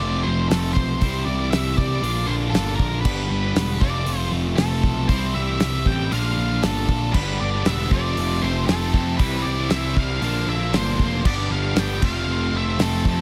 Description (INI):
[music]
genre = classic rock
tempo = 117 BPM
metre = 4/4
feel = straight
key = unclear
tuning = A4 = 440 Hz
[part]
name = octave-fuzz lead guitar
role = melody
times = 0.0-13.2 s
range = A4 to G5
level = -30 LUFS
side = equal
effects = distortion, slapback echo
[part]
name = distorted electric guitar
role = riff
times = 0.0-13.2 s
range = F2 to G4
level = -28 LUFS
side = equal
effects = overdrive
[part]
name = fuzz picked electric bass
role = bass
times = 0.0-13.2 s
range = E1 to F2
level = -27 LUFS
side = equal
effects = overdrive
[part]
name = damped 70s drum kit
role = drums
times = 0.5-13.2 s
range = crash cymbal, hi-hat, kick drum, snare drum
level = -26 LUFS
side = equal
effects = none
[part]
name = tight distorted guitar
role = riff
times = 7.1-13.2 s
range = F2 to E4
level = -32 LUFS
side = equal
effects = distortion
[sound]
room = small room ambience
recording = none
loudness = -22 LUFS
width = mono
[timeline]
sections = 0.0-13.2 A section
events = none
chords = 0.0 F; 1.0 C; 2.0 Bb; 3.1 G; 3.8 F; 5.1 C; 6.1 Bb; 7.1 G; 7.9 F; 9.2 C; 10.2 Bb; 11.2 G; 12.0 F